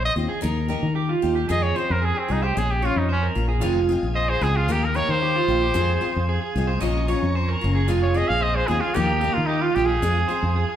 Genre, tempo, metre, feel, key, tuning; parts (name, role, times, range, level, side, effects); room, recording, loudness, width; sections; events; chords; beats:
highlife; 112 BPM; 4/4; straight; F minor; A4 = 440 Hz
bright trumpet; melody; 0.0-10.7 s; C4 to F5; -24 LUFS; equal
electric guitar at the edge of break-up; arpeggios; 0.0-10.8 s; F4 to Eb5; -26 LUFS; right 4 dB
fingered electric bass; bass; 0.0-10.6 s; F1 to Eb3; -23 LUFS; equal
picked steel-string acoustic guitar; accompaniment; 0.2-10.5 s; Eb3 to G4; -29 LUFS; left 6 dB
overdriven combo organ; sustained chords; 3.6-10.8 s; F5 to Eb6; -37 LUFS; left 1 dB
wet large studio reverb, RT60 1.2 s; band playing live in one room; -19 LUFS; side -10 dB against mid
0.0-10.8 A section
trumpet solo 0.0-10.8
0.4 Ebadd9; 1.5 Fm7; 2.6 Bbm7; 3.6 Fm7; 4.7 Ebadd9; 5.8 Fm7; 6.8 Bbm7; 7.9 Fm7; 9.0 Ebadd9; 10.0 Fm7
0.43 0.96 | 1.50 2.03 2.56 3.10 | 3.63 4.17 4.70 5.23 | 5.76 6.30 6.83 7.36 | 7.90 8.43 8.96 9.49 | 10.03 10.56